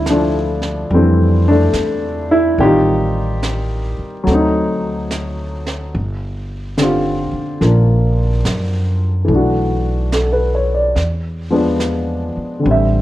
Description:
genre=jazz ballad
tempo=72 BPM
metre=4/4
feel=swing 66% on 8ths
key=D minor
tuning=A4 = 439 Hz
part: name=warm baby grand piano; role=accompaniment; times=0.0-13.0 s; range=D3 to E5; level=-16 LUFS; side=left 1 dB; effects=none
part: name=upright bass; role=bass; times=0.0-13.0 s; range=G1 to F#2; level=-18 LUFS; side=equal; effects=none
part: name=jazz brush drum kit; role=drums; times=0.1-13.0 s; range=brushed snare drum, hi-hat, snare drum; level=-27 LUFS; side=right 2 dB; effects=none
room=light reverb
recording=worn, warbling old tape, cassette tape, warbly pitch drift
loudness=-14 LUFS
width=side -15 dB against mid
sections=0.0-13.0 A section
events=none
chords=0.0 Dm9; 2.6 Am7b5; 4.3 D7b9; 5.9 Gm7; 9.3 Bm7; 11.0 E7b9

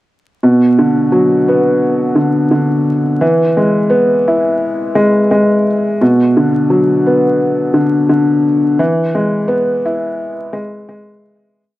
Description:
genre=hip hop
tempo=86 BPM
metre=4/4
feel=swing 63% on 16ths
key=B dorian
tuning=A4 = 439 Hz
part: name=dark upright piano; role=solo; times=0.4-11.6 s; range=B2 to E4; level=-10 LUFS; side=equal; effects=cassette tape, high-pass filter, low-pass filter
room=moderate plate reverb, RT60 2.3 s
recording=dark, warm production, vinyl crackle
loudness=-10 LUFS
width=side -16 dB against mid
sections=0.4-11.6 verse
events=fade-out 8.8-11.6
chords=0.4 Bm; 3.2 E; 6.0 Bm; 8.8 E

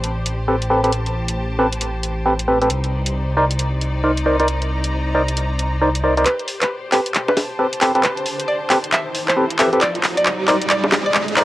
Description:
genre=UK garage, two-step garage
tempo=135 BPM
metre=4/4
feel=swing 62% on 16ths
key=unclear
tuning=A4 = 442 Hz
part: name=dark detuned saw bass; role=bass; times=0.0-6.2 s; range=A1 to C2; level=-22 LUFS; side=equal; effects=none
part: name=garage drum kit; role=drums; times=0.0-11.4 s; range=bongos, handclaps, hi-hat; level=-19 LUFS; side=equal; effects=none
part: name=bright symphonic string section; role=texture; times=0.0-11.4 s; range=Eb4 to Bb5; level=-27 LUFS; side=left 1 dB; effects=cassette tape
part: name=percussive organ stab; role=stabs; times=0.5-11.4 s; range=C4 to D5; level=-19 LUFS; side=equal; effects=chorus, cassette tape, analog delay
part: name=string-like resonator pluck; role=melody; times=6.3-11.4 s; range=B4 to E5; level=-21 LUFS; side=equal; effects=chorus, cassette tape, tape echo
part: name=riser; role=sound effects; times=8.2-11.4 s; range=none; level=-26 LUFS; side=right 2 dB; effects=none
room=light reverb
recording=home recording on cassette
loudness=-16 LUFS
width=side -16 dB against mid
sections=0.0-6.3 A section; 6.3-11.4 B section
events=filter sweep on synth stab 0.0-6.3; build-up 6.3-11.4; drum fill 6.3-11.4; riser 8.2-11.4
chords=0.0 Am9; 2.7 Cm9; 6.3 Am9; 9.8 Cm9

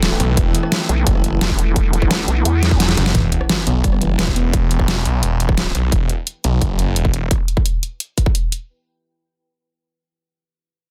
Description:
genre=dark technical drum and bass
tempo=173 BPM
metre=4/4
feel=straight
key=E minor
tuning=A4 = 440 Hz
part: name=metallic inharmonic drone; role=sustained chords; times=0.0-3.1 s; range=E3 to A4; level=-30 LUFS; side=equal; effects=chorus, built-in reverb, vintage 12-bit sampler grit, sidechain pumping
part: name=vowel-sweep wobble bass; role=bass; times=0.0-3.0 s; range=E1 to E2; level=-20 LUFS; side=equal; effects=chorus, tube saturation
part: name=dubstep drum kit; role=drums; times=0.0-8.6 s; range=hi-hat, rim click, snare drum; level=-23 LUFS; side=equal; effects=overdrive
part: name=deep dark ambient pad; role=texture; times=0.0-5.9 s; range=E4 to G5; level=-33 LUFS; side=equal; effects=chorus, built-in reverb, sidechain pumping
part: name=snarling distorted saw bass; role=bass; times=0.2-7.3 s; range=E1 to B1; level=-21 LUFS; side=equal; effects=distortion, overdrive, sidechain pumping
part: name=electronic kick drum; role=drums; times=0.4-8.3 s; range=none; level=-21 LUFS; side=equal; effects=overdrive
part: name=soft round pluck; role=arpeggios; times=3.1-4.5 s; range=E3 to B3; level=-26 LUFS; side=equal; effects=chorus, sidechain pumping, digital delay
part: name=sub drop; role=sound effects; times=3.1-4.5 s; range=none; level=-28 LUFS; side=equal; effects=none
room=little or no reverb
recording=dense, heavily limited modern master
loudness=-17 LUFS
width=mono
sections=0.0-3.1 A section; 3.1-8.7 B section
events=drop 0.0-3.1; drum fill 2.6-3.1; kick drops out 2.8-3.1; impact 3.1-4.5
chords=0.0 Em

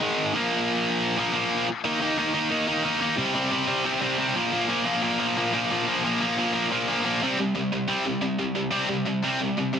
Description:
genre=punk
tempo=179 BPM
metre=4/4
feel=straight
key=C minor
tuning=A4 = 440 Hz
part: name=tight distorted guitar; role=solo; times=0.0-9.8 s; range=Ab2 to Eb4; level=-22 LUFS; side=equal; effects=distortion
room=moderate studio reverb, RT60 0.9 s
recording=dense, heavily limited modern master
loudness=-22 LUFS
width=side -8 dB against mid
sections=0.0-1.9 A section; 1.9-7.2 B section; 7.2-9.8 C section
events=none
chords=0.3 Bb5; 1.9 Eb5; 3.2 C5; 4.4 Bb5; 7.2 C5

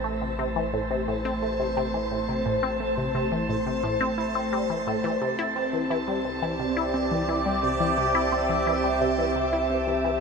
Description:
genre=ambient, sequencer-driven space music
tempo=87 BPM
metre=4/4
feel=straight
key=A minor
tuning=A4 = 440 Hz
part: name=sweeping resonant pad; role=sustained chords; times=0.0-10.2 s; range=A3 to E5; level=-26 LUFS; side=equal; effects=wide subtle chorus
part: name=resonant blip pluck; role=riff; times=0.0-10.2 s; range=A2 to E4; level=-28 LUFS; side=left 1 dB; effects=phaser, vintage 12-bit sampler grit, ping-pong delay
part: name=warm sub bass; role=bass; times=0.0-10.2 s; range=A1 to C2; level=-37 LUFS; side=equal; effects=none
part: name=bubbling stepped-filter texture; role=texture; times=0.0-10.2 s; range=A5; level=-36 LUFS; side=right 3 dB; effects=chorus, built-in reverb
room=wet shimmer reverb, RT60 7.9 s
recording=none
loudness=-23 LUFS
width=side -5 dB against mid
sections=0.0-10.2 A section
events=fade-in on synth texture 0.0-10.2; fade-out 8.9-10.2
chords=0.0 Am; 5.2 Cadd9

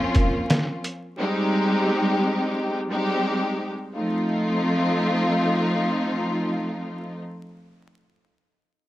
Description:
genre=hip hop, boom-bap hip-hop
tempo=87 BPM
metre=4/4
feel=swing 58% on 16ths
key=unclear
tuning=A4 = 438 Hz
part: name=rich studio string section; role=accompaniment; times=0.0-7.2 s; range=F3 to G4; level=-22 LUFS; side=equal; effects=cassette tape, high-pass filter, low-pass filter
part: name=trip hop sampler-style drum kit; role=drums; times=0.1-1.0 s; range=hi-hat, kick drum, snare drum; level=-22 LUFS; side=equal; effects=none
room=moderate small room reverb, RT60 0.5 s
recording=vinyl crackle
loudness=-21 LUFS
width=side -15 dB against mid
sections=0.0-3.9 A section; 3.9-6.7 B section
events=none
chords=0.0 Bbmadd9; 1.2 Abmaj7; 3.9 F7

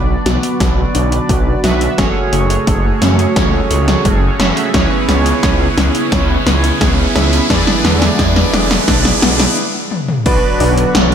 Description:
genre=synthwave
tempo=87 BPM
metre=4/4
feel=straight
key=B dorian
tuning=A4 = 440 Hz
part: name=chorused pulse-width pad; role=sustained chords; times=0.0-11.1 s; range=C#3 to F#4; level=-21 LUFS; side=right 1 dB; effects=sidechain pumping
part: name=wide unison pluck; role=arpeggios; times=0.0-11.1 s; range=G#3 to F#4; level=-24 LUFS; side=left 3 dB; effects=none
part: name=chorused polysynth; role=stabs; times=0.0-11.1 s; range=B3 to E5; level=-19 LUFS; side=right 2 dB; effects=cassette tape, digital delay
part: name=wide detuned saw bass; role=bass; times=0.0-11.1 s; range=E1 to F#2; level=-16 LUFS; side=equal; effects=chorus
part: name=riser and impact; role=sound effects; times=1.5-11.1 s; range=none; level=-22 LUFS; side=equal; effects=none
part: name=80s electronic pad drums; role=drums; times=0.3-11.1 s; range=crash cymbal, hi-hat, snare drum, toms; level=-17 LUFS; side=equal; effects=gated reverb on snare and toms, overdrive, studio reverb, gated reverb
part: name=electronic kick drum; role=drums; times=0.6-10.4 s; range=none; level=-18 LUFS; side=equal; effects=overdrive, studio reverb
part: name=wide unison lead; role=melody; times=10.3-11.1 s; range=D4 to B4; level=-18 LUFS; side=right 1 dB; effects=lush chorus, cassette tape, ping-pong delay
room=moderate plate reverb, RT60 2.4 s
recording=none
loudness=-11 LUFS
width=side -8 dB against mid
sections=0.0-10.3 A section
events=drum fill 0.0-9.6, 9.9-10.3; filter sweep on analog synth pad 0.0-10.3; riser 1.5-9.6; stop 9.6-10.3; impact 10.3-11.1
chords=0.0 Bm; 2.0 F#madd9; 4.7 C#m7; 7.5 E7; 10.3 Bm

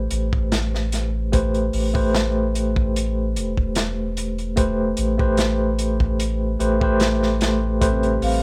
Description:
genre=trip hop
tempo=74 BPM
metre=4/4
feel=swing 53% on 16ths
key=A minor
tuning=A4 = 440 Hz
part: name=tine electric piano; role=accompaniment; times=0.0-8.4 s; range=A3 to C5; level=-25 LUFS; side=equal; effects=tremolo
part: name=soft dub sub bass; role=bass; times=0.0-8.4 s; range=E1 to A1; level=-26 LUFS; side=equal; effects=tube saturation
part: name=crunchy breakbeat drum kit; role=drums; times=0.1-8.4 s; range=hi-hat, kick drum, snare drum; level=-26 LUFS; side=equal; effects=none
part: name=string machine, cellos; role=sustained chords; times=7.8-8.4 s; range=A3 to B5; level=-30 LUFS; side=equal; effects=ensemble chorus, vintage 12-bit sampler grit
part: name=pure breathy sine lead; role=melody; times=8.2-8.4 s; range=F5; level=-26 LUFS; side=equal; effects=phaser, lush chorus
room=light reverb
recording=rough home demo mix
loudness=-21 LUFS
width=mono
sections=0.0-8.4 A section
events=none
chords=0.0 Am9

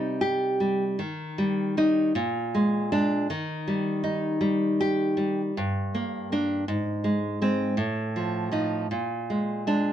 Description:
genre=romantic piece for solo classical guitar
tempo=53 BPM (dotted quarters)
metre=6/8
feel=rubato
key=unclear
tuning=A4 = 440 Hz
part: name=nylon-string guitar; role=solo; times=0.0-9.9 s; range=G2 to G4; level=-24 LUFS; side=equal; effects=none
room=light reverb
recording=dark, warm production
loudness=-24 LUFS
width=side -10 dB against mid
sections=0.0-9.9 A section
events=none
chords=0.0 Cm; 1.0 Eb; 2.2 Bb7; 3.3 Eb; 5.6 Gm; 6.7 Ab; 7.8 F7/A; 8.9 Bb7

